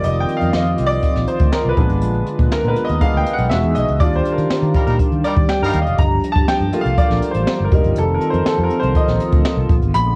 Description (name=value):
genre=polished 1980s jazz-funk pop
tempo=121 BPM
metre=4/4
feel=straight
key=unclear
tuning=A4 = 439 Hz
part: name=clear baby grand piano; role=accompaniment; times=0.0-10.2 s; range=G3 to Cb6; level=-22 LUFS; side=equal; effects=analog chorus, cassette tape
part: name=hollow soft pad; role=sustained chords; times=0.0-10.2 s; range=D3 to G#4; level=-26 LUFS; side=equal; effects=chorus, cassette tape
part: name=fingered electric bass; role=bass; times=0.0-10.1 s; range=E1 to Eb3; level=-22 LUFS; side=equal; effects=none
part: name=jazz brush drum kit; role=drums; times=0.0-10.1 s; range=hi-hat, kick drum, snare drum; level=-21 LUFS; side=equal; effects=cassette tape
part: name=clear horn section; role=second line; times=4.7-5.8 s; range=G3 to Bb4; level=-25 LUFS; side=equal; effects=cassette tape
room=little or no reverb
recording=home recording on cassette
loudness=-17 LUFS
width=mono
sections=0.0-10.2 A section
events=grand piano solo 0.0-10.2; band accent 4.0-6.0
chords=0.0 F7sus4; 1.8 Bb7b9; 3.5 Emaj7; 4.0 Ebmaj7; 6.0 Gm7; 7.7 F7sus4